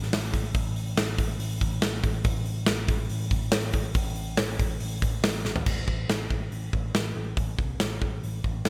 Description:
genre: hard rock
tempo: 140 BPM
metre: 4/4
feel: straight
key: A minor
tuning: A4 = 435 Hz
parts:
  - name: picked electric bass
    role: bass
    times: 0.0-8.7 s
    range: A1 to C2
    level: -34 LUFS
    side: equal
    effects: none
  - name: big rock drum kit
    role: drums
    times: 0.0-8.7 s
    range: crash cymbal, hi-hat, kick drum, snare drum, toms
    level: -29 LUFS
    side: equal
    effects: gated reverb
room: little or no reverb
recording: bright 1980s-style digital production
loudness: -28 LUFS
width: mono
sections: 0.0-5.7 A section; 5.7-8.7 B section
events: drum fill 5.4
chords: none

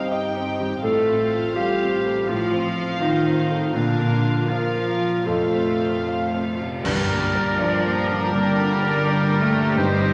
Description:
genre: cinematic, emotional film score for orchestra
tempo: 82 BPM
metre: 4/4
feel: rubato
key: G minor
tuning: A4 = 440 Hz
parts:
  - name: warm symphonic violin section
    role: melody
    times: 0.0-10.1 s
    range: Bb4 to G5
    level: -33 LUFS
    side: equal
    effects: none
  - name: dark clarinet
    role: second line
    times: 0.0-10.1 s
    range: Bb3 to C5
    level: -28 LUFS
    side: equal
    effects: none
  - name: warm symphonic violin section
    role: second line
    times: 0.0-10.1 s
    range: G4 to C5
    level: -36 LUFS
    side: equal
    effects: none
  - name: dark symphonic viola section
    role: accompaniment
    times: 0.0-10.1 s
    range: Eb3 to F4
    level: -33 LUFS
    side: equal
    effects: none
  - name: felt-muted upright piano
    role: accompaniment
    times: 0.0-10.1 s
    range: F2 to F5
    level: -32 LUFS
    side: equal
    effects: none
  - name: mellow French horn section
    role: sustained chords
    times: 0.0-10.1 s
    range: Bb2 to Eb5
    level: -36 LUFS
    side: equal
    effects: none
  - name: concert harp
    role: arpeggios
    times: 0.0-10.1 s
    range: F2 to Bb5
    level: -30 LUFS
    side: equal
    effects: none
  - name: rich symphonic double bass section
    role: bass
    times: 0.0-10.1 s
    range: F1 to Bb1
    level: -37 LUFS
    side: equal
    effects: none
  - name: warm symphonic cello section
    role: bass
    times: 0.0-10.1 s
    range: D3 to C4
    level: -28 LUFS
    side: equal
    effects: none
  - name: cymbal swell, clash cymbals and concert bass drum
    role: percussion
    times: 3.8-8.3 s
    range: none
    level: -33 LUFS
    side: equal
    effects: none
  - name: clear oboe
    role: second line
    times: 6.8-10.1 s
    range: Bb4 to C5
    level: -29 LUFS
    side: equal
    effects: none
  - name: silver concert flute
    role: second line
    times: 6.8-10.1 s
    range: D5 to Eb5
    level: -32 LUFS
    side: equal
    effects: none
  - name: timpani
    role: percussion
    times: 6.8-10.1 s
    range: G2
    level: -34 LUFS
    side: equal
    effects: none
room: wet scoring stage reverb, RT60 1.5 s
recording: none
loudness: -21 LUFS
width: mono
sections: 0.0-6.8 A section; 6.8-10.1 B section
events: band accent 6.8-7.6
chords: 0.0 Cm/G; 0.8 F/A; 3.7 Bb; 5.3 F; 6.8 Gm

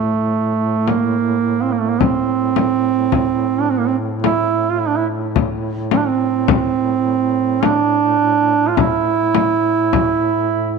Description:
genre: caucasian folk, Caucasian lament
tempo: 53 BPM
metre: 3/4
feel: rubato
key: A phrygian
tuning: A4 = 440 Hz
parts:
  - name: warm duduk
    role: melody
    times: 0.0-10.8 s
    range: A3 to F4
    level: -16 LUFS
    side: right 7 dB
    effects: none
  - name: mellow duduk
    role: drone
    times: 0.0-10.8 s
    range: A2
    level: -24 LUFS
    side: equal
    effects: stereo widening
  - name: frame drum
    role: percussion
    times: 0.9-10.2 s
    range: none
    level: -18 LUFS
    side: left 11 dB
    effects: none
room: moderate plate reverb, RT60 2.5 s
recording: 1960s-style stereo with parts hard left and right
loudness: -15 LUFS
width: side -4 dB against mid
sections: 0.0-10.8 A section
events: none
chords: none

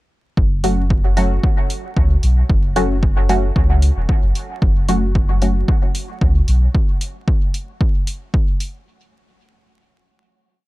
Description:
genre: dub techno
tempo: 113 BPM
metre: 4/4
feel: straight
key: F# minor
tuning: A4 = 440 Hz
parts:
  - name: soft dub sub bass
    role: bass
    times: 0.4-6.7 s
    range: E1 to C#2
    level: -16 LUFS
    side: equal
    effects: tube saturation, sidechain pumping
  - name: electronic kick drum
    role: drums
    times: 0.4-8.4 s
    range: none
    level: -16 LUFS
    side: equal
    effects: overdrive
  - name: filtered dub chord stab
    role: stabs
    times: 0.6-5.7 s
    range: F#3 to F#4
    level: -22 LUFS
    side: equal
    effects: chorus, phaser, dub echo
  - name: electronic hi-hat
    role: drums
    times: 0.6-8.7 s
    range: none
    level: -29 LUFS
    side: right 1 dB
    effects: overdrive
room: little or no reverb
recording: dark, warm production, vinyl crackle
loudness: -15 LUFS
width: side -19 dB against mid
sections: 0.4-8.9 groove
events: none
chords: 0.4 F#m

